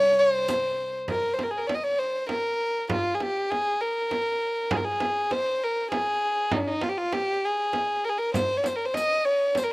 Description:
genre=Persian modal ensemble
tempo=66 BPM (dotted quarters)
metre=6/8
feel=straight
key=C dastgah shur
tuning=A4 = 439 Hz
part: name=dark violin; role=melody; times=0.0-9.7 s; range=Db4+40c to Eb5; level=-24 LUFS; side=equal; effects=none
part: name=warm studio cello section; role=drone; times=0.0-1.1 s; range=C2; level=-45 LUFS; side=left 2 dB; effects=none
part: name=frame drum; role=percussion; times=0.5-9.7 s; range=none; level=-31 LUFS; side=right 3 dB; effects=none
part: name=riq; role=percussion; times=0.5-0.6, 8.4-9.7 s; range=none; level=-37 LUFS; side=left 3 dB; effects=none
room=little or no reverb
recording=recorded outdoors, with no room sound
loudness=-24 LUFS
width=side -22 dB against mid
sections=0.0-1.1 A section; 1.1-9.7 B section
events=none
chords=none

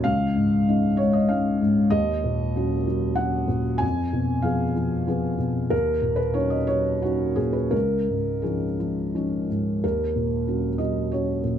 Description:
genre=neoclassical minimalist piano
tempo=84-97 BPM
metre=3/4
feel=rubato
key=Eb minor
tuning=A4 = 440 Hz
part: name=felt-muted upright piano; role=solo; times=0.0-11.6 s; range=Db2 to Ab5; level=-21 LUFS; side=equal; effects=none
room=moderate studio reverb, RT60 0.5 s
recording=dark, warm production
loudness=-21 LUFS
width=side -9 dB against mid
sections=0.0-9.8 A section; 9.8-11.6 B section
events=none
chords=0.1 Dbadd9; 1.9 Ebm7; 3.8 Fdim; 5.7 Ebm7; 7.7 Dbadd9; 9.8 Ebm7

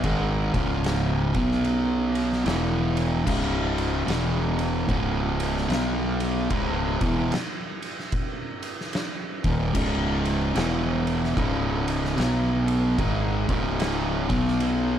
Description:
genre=stoner and doom metal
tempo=74 BPM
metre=4/4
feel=swing 62% on 8ths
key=C# minor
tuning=A4 = 440 Hz
part: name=fuzz guitar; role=riff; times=0.0-15.0 s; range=C#2 to B3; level=-24 LUFS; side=equal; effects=distortion
part: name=fuzz fingered electric bass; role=bass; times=0.0-15.0 s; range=C#1 to B1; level=-29 LUFS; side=equal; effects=overdrive
part: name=oversized low-tuned drum kit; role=drums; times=0.0-14.8 s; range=crash cymbal, kick drum, ride cymbal, snare drum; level=-29 LUFS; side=equal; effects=none
room=studio reverb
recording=none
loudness=-22 LUFS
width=side -10 dB against mid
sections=0.0-15.0 A section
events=none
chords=0.0 C#5; 1.2 B5; 2.5 E5; 3.3 C#5; 4.1 E5; 4.9 C#5; 5.7 B5; 6.5 C#m; 10.6 E5; 11.4 C#5; 12.2 B5; 13.0 C#5; 14.2 B5

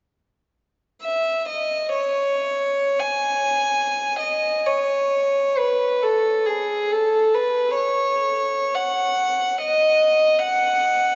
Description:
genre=classical, free, expressive piece for unaccompanied violin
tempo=43-74 BPM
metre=3/4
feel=rubato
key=C# minor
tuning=A4 = 440 Hz
part: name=rich violin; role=solo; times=1.0-11.2 s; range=G#4 to G#5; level=-21 LUFS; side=equal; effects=none
room=wet cathedral reverb, RT60 4.3 s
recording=dark, warm production, nothing above 7.5 kHz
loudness=-21 LUFS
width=mono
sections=1.0-4.2 A section; 4.2-11.2 B section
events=none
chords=none

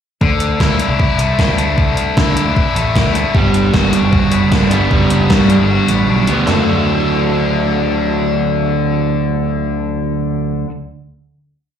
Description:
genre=indie rock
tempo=153 BPM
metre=4/4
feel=straight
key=D major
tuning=A4 = 440 Hz
part: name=overdriven electric guitar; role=riff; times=0.2-10.7 s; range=D3 to A4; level=-18 LUFS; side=left 6 dB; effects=slapback echo
part: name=growling picked electric bass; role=bass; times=0.2-10.6 s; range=F#1 to D3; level=-18 LUFS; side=left 1 dB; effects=overdrive
part: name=gated 80s digital drum machine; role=drums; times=0.2-6.6 s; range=handclaps, hi-hat, kick drum, snare drum, toms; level=-16 LUFS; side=equal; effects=gated reverb, gated reverb snare, overdrive
part: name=overdriven semi-hollow guitar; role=riff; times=3.3-10.7 s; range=G2 to D4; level=-16 LUFS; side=right 5 dB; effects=analog chorus
room=little or no reverb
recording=live gig heard through the venue's PA, club reverb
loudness=-12 LUFS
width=side -8 dB against mid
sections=0.2-6.5 interlude; 6.5-9.6 final chord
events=break 5.7-6.5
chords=0.2 Dsus2; 3.3 Gmaj7; 6.5 D

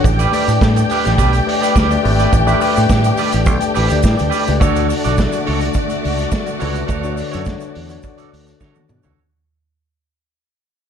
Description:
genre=disco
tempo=105 BPM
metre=4/4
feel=straight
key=D major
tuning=A4 = 441 Hz
part: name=rich studio string section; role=second line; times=0.0-9.1 s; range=A3 to G5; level=-22 LUFS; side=left 1 dB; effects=none
part: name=electric guitar at the edge of break-up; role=accompaniment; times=0.0-9.2 s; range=F#4 to D5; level=-23 LUFS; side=right 7 dB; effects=none
part: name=tine electric piano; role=accompaniment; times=0.0-9.2 s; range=D3 to E5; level=-21 LUFS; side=left 8 dB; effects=medium tremolo
part: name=fingered electric bass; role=bass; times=0.0-9.1 s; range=G#1 to D3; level=-18 LUFS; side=right 1 dB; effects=none
part: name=vintage drum kit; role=drums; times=0.0-9.2 s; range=hi-hat, kick drum, snare drum, toms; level=-20 LUFS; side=right 1 dB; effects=none
part: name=overdriven tonewheel organ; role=sustained chords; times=0.1-9.1 s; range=D3 to G4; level=-26 LUFS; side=equal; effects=chorus vibrato, slow rotary speaker
part: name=tube shaker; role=percussion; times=0.1-9.2 s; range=none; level=-37 LUFS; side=right 11 dB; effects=none
room=light reverb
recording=dark, warm production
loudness=-13 LUFS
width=side -8 dB against mid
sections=0.0-4.6 A section; 4.6-9.2 B section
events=fade-out 4.6-9.2; drum fill 8.6-9.2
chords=0.0 A9sus4; 4.6 Dmaj7

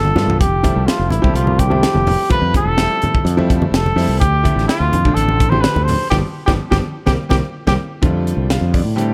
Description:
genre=electric jazz fusion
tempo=126 BPM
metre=4/4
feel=straight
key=F lydian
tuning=A4 = 440 Hz
part: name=mellow trumpet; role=melody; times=0.0-7.7 s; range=E4 to C5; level=-22 LUFS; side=equal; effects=none
part: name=bright grand piano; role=accompaniment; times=0.0-9.1 s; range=D3 to F5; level=-25 LUFS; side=equal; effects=none
part: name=fretless electric bass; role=bass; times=0.0-9.1 s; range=E1 to A2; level=-20 LUFS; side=equal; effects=none
part: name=congas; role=percussion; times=0.0-7.8 s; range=none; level=-25 LUFS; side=equal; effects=none
part: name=crisp fusion drum kit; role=drums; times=0.2-9.1 s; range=hi-hat, kick drum, snare drum, toms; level=-21 LUFS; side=equal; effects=none
room=light reverb, studio reverb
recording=none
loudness=-16 LUFS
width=mono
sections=0.0-8.0 A section; 8.0-9.1 B section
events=drum fill 0.2, 7.5-8.0; band accent 6.1-8.0; grand piano fill 7.3-8.0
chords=0.4 Fmaj9; 4.2 Dm7; 6.1 G7; 7.1 C5; 8.0 F69

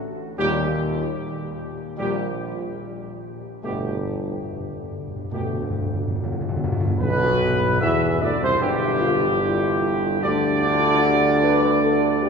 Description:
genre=classical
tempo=74 BPM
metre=4/4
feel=straight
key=unclear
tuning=A4 = 440 Hz
part: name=dark trumpet section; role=melody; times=0.4-12.3 s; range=G4 to E5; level=-24 LUFS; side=right 1 dB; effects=none
part: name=mellow French horn section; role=sustained chords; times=0.4-12.3 s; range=G3 to B4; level=-29 LUFS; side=left 5 dB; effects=none
part: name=warm trombone section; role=sustained chords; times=0.4-12.3 s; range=G2 to E3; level=-27 LUFS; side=right 1 dB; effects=none
part: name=clear tuba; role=bass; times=0.4-12.3 s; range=G1 to E2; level=-26 LUFS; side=right 1 dB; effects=none
part: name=timpani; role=percussion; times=3.6-8.2 s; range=G2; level=-27 LUFS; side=left 1 dB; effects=none
room=wet cathedral reverb, RT60 5.5 s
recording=recorded in a church or concert hall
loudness=-19 LUFS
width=side -5 dB against mid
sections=0.0-7.0 A section; 7.0-12.3 B section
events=timpani fill 3.6-7.0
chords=0.4 Eb; 3.6 Gadd9; 7.0 G

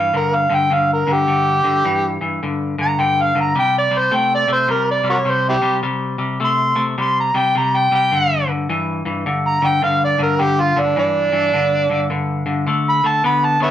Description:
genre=blues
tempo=105 BPM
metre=4/4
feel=swing 63% on 8ths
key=unclear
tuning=A4 = 437 Hz
part: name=overdriven harmonica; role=melody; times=0.0-13.7 s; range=C4 to C6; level=-16 LUFS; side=right 1 dB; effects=none
part: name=clean electric guitar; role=riff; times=0.0-13.7 s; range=G2 to B3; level=-19 LUFS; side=left 2 dB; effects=none
room=moderate studio reverb, RT60 0.5 s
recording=band playing live in one room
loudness=-15 LUFS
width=side -11 dB against mid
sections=0.0-13.7 A section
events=harmonica solo 0.0-13.7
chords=0.0 G5; 3.6 C5; 8.1 G5; 12.7 D5

